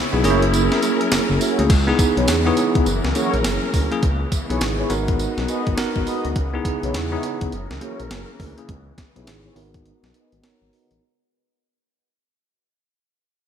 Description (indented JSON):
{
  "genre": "R&B, new jack swing",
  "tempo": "103 BPM",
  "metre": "4/4",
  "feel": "swing 63% on 16ths",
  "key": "C# dorian",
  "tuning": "A4 = 439 Hz",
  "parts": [
    { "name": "warm symphonic string section", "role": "sustained chords", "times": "0.0-11.0 s", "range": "C#3 to A#4", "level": "-28 LUFS", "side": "left 2 dB", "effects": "low-pass filter" },
    { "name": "smooth gliding synth bass", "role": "bass", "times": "0.0-11.0 s", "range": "F#1 to E2", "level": "-24 LUFS", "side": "equal", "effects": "none" },
    { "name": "bell-like tine electric piano", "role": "accompaniment", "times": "0.1-11.0 s", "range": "A3 to C#5", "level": "-22 LUFS", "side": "right 1 dB", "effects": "medium stereo tremolo, low-pass filter" },
    { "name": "mellow synth brass", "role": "stabs", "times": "0.2-10.9 s", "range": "E4 to D#5", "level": "-28 LUFS", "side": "left 1 dB", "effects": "chorus, low-pass filter, ping-pong delay" },
    { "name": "crisp 8-bit digital drum machine", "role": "drums", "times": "0.2-11.0 s", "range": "crash cymbal, hi-hat, kick drum, snare drum, tambourine", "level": "-23 LUFS", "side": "equal", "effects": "overdrive, gated reverb" }
  ],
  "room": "moderate lush hall reverb, RT60 2.2 s",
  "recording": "bright 1980s-style digital production",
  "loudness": "-17 LUFS",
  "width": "side -8 dB against mid",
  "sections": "0.0-1.7 A section; 1.7-11.0 B section",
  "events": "break 0.0-1.7, 9.9-11.0; fade-out 1.7-11.0; filter sweep 1.7-11.0; tine electric piano fill 10.1-11.0",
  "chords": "0.2 F#7; 1.7 C#m7; 2.9 F#7; 4.0 C#m7; 4.9 G#m7; 6.4 C#m7; 7.5 F#7; 8.7 C#m7; 9.6 G#m7"
}